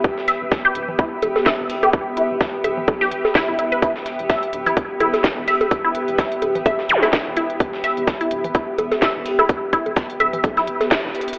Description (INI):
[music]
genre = minimal techno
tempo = 127 BPM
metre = 4/4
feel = swing 56% on 16ths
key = E minor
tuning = A4 = 440 Hz
[part]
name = rubbery square bass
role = bass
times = 0.0-11.1 s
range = D1 to B1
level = -37 LUFS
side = equal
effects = sidechain pumping
[part]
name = breakbeat sampler-style drum kit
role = drums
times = 0.0-11.3 s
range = hi-hat, shaker, snare drum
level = -32 LUFS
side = equal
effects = high-pass filter on snare, sidechain pumping on perc, high-pass filter on perc, sidechain pumping on hats, high-pass filter on hats
[part]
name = electronic kick drum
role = drums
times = 0.0-11.0 s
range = none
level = -22 LUFS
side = equal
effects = none
[part]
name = granular cloud pad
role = texture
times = 0.0-11.4 s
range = B3 to B5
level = -24 LUFS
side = equal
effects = built-in reverb, sidechain pumping
[part]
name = resonant blip pluck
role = riff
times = 0.3-11.0 s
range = E4 to E5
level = -20 LUFS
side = equal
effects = phaser, analog chorus, vintage 12-bit sampler grit, sidechain pumping, analog delay
[part]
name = garage drum kit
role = drums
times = 0.3-11.4 s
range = hi-hat, snare drum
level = -24 LUFS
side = equal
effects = low-pass filter on hats, low-pass filter on snare, low-pass filter on room
[part]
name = congas and bongos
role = percussion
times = 0.9-10.9 s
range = none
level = -22 LUFS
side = equal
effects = tape echo
[part]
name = zap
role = sound effects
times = 6.9-7.0 s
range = none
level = -19 LUFS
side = equal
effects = none
[sound]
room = moderate lush hall reverb, RT60 2.2 s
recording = dry, gritty hardware recording, telephone sound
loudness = -17 LUFS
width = side -28 dB against mid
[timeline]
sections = 0.0-11.4 A section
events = band accent 10.9; drum fill 11.1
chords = 0.0 Em